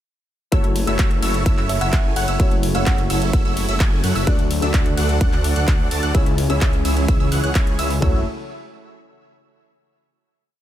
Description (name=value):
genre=EDM, festival progressive house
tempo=128 BPM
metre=4/4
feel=straight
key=F# minor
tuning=A4 = 440 Hz
part: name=felt-muted upright piano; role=accompaniment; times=0.5-8.2 s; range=C#3 to D5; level=-28 LUFS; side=left 5 dB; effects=vintage 12-bit sampler grit, sidechain pumping, ping-pong delay
part: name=lush unison pad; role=sustained chords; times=1.2-8.2 s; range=C#3 to F#4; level=-30 LUFS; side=right 1 dB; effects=chorus, phaser, sidechain pumping
part: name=wide unison pluck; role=arpeggios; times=0.5-8.2 s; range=E6 to A6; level=-30 LUFS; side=right 1 dB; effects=sidechain pumping, ping-pong delay
part: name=supersaw chords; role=riff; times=0.5-8.2 s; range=C#4 to A5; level=-27 LUFS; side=right 2 dB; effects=phaser, sidechain pumping, ping-pong delay
part: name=detuned saw bass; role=bass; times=0.5-8.2 s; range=F#1 to F#2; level=-22 LUFS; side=equal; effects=sidechain pumping
part: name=big-room dance drum kit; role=drums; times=0.5-8.1 s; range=kick drum, toms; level=-18 LUFS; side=equal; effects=none
part: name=big-room dance drum kit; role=drums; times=0.5-8.0 s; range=handclaps, hi-hat, ride cymbal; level=-28 LUFS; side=equal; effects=none
part: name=thumb-piano-like synth pluck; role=melody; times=1.7-3.1 s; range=E5 to F#5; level=-29 LUFS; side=equal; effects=chorus, cassette tape, ping-pong delay
room=little or no reverb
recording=none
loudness=-16 LUFS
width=side -12 dB against mid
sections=0.5-8.0 drop; 8.0-9.9 final chord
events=drop 0.5-8.0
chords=0.5 F#m7; 4.3 D; 6.1 C#m; 8.0 F#m7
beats=| 0.52 0.99 1.46 1.93 | 2.40 2.87 3.33 3.80 | 4.27 4.74 5.21 5.68 | 6.15 6.62 7.08 7.55 | 8.02